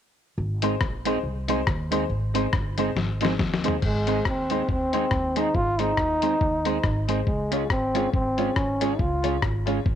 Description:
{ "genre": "ska", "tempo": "139 BPM", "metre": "4/4", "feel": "swing 57% on 8ths", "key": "Ab major", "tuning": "A4 = 440 Hz", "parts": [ { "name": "upright bass", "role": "bass", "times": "0.4-10.0 s", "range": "G1 to Eb2", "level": "-29 LUFS", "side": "equal", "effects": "none" }, { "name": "semi-hollow electric guitar", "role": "accompaniment", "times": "0.6-9.9 s", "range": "Ab3 to Ab4", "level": "-30 LUFS", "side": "right 13 dB", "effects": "harmonic tremolo" }, { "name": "clear upright piano", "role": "stabs", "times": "0.6-9.8 s", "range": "Eb4 to Db5", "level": "-31 LUFS", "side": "left 11 dB", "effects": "none" }, { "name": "lo-fi sampler-style drum kit", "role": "drums", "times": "0.6-10.0 s", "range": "crash cymbal, hi-hat, kick drum, rim click, snare drum, toms", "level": "-27 LUFS", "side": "left 2 dB", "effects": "none" }, { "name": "breathy trombone", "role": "melody", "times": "3.8-9.4 s", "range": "Ab3 to F4", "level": "-25 LUFS", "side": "equal", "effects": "none" } ], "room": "light reverb, digital ambience", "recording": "1960s-style stereo with parts hard left and right", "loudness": "-22 LUFS", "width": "side -9 dB against mid", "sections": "0.4-3.8 A section; 3.8-10.0 B section", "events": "drum fill 3.0-3.8", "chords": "0.4 Ab; 7.3 Db", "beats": "| 0.39 0.81 1.24 1.67 | 2.10 2.53 2.96 3.39 | 3.82 4.25 4.68 5.11 | 5.54 5.97 6.41 6.84 | 7.27 7.70 8.13 8.56 | 8.99 9.42 9.85" }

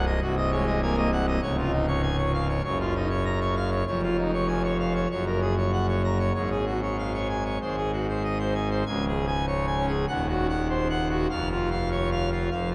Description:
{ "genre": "classical, organ toccata", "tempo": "98 BPM", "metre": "4/4", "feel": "straight", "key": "Db major", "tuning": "A4 = 440 Hz", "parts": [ { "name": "pipe organ, full organ", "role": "solo", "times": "0.0-12.7 s", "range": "C1 to Bb5", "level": "-26 LUFS", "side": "equal", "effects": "none" } ], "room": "wet cathedral reverb, RT60 4.6 s", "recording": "none", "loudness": "-26 LUFS", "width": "mono", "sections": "0.0-8.9 A section; 8.9-12.7 B section", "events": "none", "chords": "0.0 Ab7/C; 1.4 Db; 2.6 Gbmaj7; 3.9 Db/F; 5.1 Gb; 6.3 Db/Ab; 7.6 Ab; 8.9 Db5; 10.1 Cdim/Eb; 11.3 Db/F", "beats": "0.22 0.82 | 1.43 2.04 2.65 3.26 | 3.87 4.48 5.10 5.72 | 6.35 6.98 7.61 8.24 | 8.87 9.48 10.09 10.70 | 11.31 11.91 12.52" }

